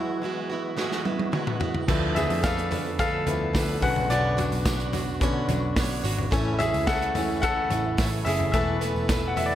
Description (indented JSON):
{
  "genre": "piano-driven pop",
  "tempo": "108 BPM",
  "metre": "4/4",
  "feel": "straight",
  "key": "unclear",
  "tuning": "A4 = 440 Hz",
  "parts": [
    { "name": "clear baby grand piano", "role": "accompaniment", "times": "0.0-9.6 s", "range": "C#3 to G#5", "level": "-27 LUFS", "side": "left 3 dB", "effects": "none" },
    { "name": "tonewheel organ", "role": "sustained chords", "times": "0.0-9.6 s", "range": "B2 to F#4", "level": "-35 LUFS", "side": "equal", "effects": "overdrive, chorus vibrato, fast rotary speaker" },
    { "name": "picked plugged-in steel-string acoustic guitar", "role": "riff", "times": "0.0-9.6 s", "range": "B2 to C#5", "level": "-30 LUFS", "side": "right 5 dB", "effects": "analog delay" },
    { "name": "modern studio drum kit", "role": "drums", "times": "0.8-9.5 s", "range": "crash cymbal, hi-hat, kick drum, snare drum, toms", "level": "-28 LUFS", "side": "equal", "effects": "analog delay" },
    { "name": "vintage muted picked electric bass", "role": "bass", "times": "1.9-9.6 s", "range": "E1 to F2", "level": "-30 LUFS", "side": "equal", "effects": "none" },
    { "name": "tambourine", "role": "percussion", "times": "1.9-9.6 s", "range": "none", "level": "-44 LUFS", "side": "left 3 dB", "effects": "analog delay" }
  ],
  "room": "moderate plate reverb, RT60 1.6 s, small room ambience",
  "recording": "echo-heavy mix",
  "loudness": "-23 LUFS",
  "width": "side -12 dB against mid",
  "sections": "0.0-1.9 A section; 1.9-9.6 B section",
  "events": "break 0.0-1.9; drum fill 0.8-1.9; grand piano solo 1.9-9.6",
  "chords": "0.0 Eadd9; 1.9 Dm6; 3.8 Bmadd9; 6.3 A; 8.5 Esus4"
}